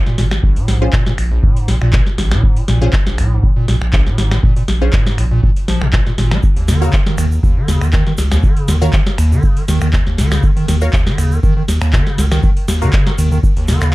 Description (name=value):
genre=acid house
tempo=120 BPM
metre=4/4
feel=swing 53% on 16ths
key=Bb minor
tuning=A4 = 440 Hz
part: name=saturated sub bass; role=bass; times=0.0-13.9 s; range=Ab1 to Eb2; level=-15 LUFS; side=equal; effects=tube saturation, sidechain pumping
part: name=acid bass, square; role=riff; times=0.1-13.9 s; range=Bb1 to Bb3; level=-18 LUFS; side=equal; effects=overdrive, lush chorus, cassette tape, sidechain pumping, tape echo
part: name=booming analog drum machine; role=drums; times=0.1-13.9 s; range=finger snaps, handclaps, hi-hat, ride cymbal, snare drum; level=-21 LUFS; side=equal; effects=none
part: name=electronic kick drum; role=drums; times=0.4-13.5 s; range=none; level=-14 LUFS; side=equal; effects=none
part: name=filtered dub chord stab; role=stabs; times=0.8-12.9 s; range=Db4 to F5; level=-23 LUFS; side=equal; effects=phaser, tape echo
part: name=tube shaker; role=percussion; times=6.4-13.9 s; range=none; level=-33 LUFS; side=right 4 dB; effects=none
room=light reverb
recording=dark, warm production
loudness=-12 LUFS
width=side -19 dB against mid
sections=0.0-13.9 A section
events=none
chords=0.0 Bb7(no3); 6.4 Eb7(no3)